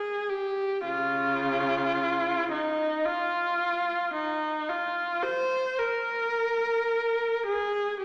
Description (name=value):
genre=classical, free, expressive piece for unaccompanied viola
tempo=54 BPM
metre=4/4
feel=rubato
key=F minor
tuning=A4 = 440 Hz
part: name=rich viola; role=solo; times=0.0-8.0 s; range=Db3 to C5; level=-28 LUFS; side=equal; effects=none
room=wet recital hall reverb, RT60 1.5 s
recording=none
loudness=-28 LUFS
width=mono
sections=0.0-8.0 A section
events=none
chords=none